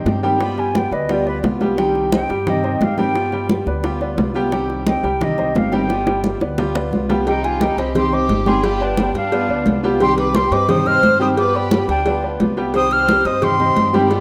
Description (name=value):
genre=latin, Cuban son and guajira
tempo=175 BPM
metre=4/4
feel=straight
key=C harmonic minor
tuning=A4 = 439 Hz
part: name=fingerpicked steel-string acoustic guitar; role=accompaniment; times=0.0-14.2 s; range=C3 to G4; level=-25 LUFS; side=equal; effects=none
part: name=warm baby grand piano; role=arpeggios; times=0.0-14.2 s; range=G3 to G5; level=-25 LUFS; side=equal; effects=none
part: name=upright bass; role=bass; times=0.0-14.2 s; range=G1 to G2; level=-28 LUFS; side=equal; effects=none
part: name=bongos and cowbell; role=percussion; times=0.1-14.2 s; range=none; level=-28 LUFS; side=equal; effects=none
part: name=congas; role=percussion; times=0.1-14.2 s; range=none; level=-24 LUFS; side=equal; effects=none
part: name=silver concert flute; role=melody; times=0.4-14.2 s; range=B4 to F6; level=-23 LUFS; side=equal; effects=none
part: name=rich studio violin section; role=second line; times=7.3-14.2 s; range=D4 to C5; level=-27 LUFS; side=equal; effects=none
room=moderate lush hall reverb, RT60 2.5 s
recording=rough home demo mix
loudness=-18 LUFS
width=mono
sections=0.0-7.3 A section; 7.3-14.2 B section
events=flute solo 0.0-7.3; drum fill 5.9-7.3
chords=0.4 G7; 1.8 Cm; 3.2 G7; 4.5 Cm; 5.9 G7; 7.3 Cm; 8.6 G7; 10.0 Cm; 11.4 G7; 12.7 Cm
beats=0.06 | 0.41 0.75 1.09 1.44 | 1.78 2.12 2.47 2.81 | 3.15 3.50 3.84 4.18 | 4.53 4.87 5.21 5.55 | 5.89 6.24 6.58 6.92 | 7.26 7.61 7.95 8.29 | 8.63 8.98 9.32 9.66 | 10.00 10.35 10.69 11.03 | 11.37 11.71 12.05 12.40 | 12.74 13.08 13.42 13.77 | 14.11